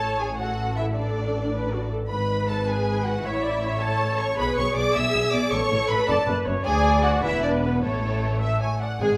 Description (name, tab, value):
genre	quick classical-period movement for string orchestra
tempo	105 BPM (dotted quarters)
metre	6/8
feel	straight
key	A major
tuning	A4 = 439 Hz
part	muted symphonic violin section	melody	0.0-9.2 s	A4 to E6	-31 LUFS	equal	none
part	muted symphonic violin section	second line	0.0-9.2 s	A3 to E5	-30 LUFS	equal	none
part	muted studio viola section	accompaniment	0.0-9.2 s	G#3 to E5	-30 LUFS	equal	none
part	muted symphonic cello section	bass	0.0-9.1 s	D2 to B2	-31 LUFS	equal	none
part	muted symphonic double bass section	bass	0.0-9.1 s	E1 to D2	-32 LUFS	equal	none
room	wet recital hall reverb, RT60 1.2 s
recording	none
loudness	-24 LUFS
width	mono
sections	0.0-9.0 A section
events	none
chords	0.0 A; 2.1 G#m7; 3.3 A; 4.4 E/B; 5.5 A; 6.1 F#madd11; 6.7 D; 7.2 E5; 7.8 A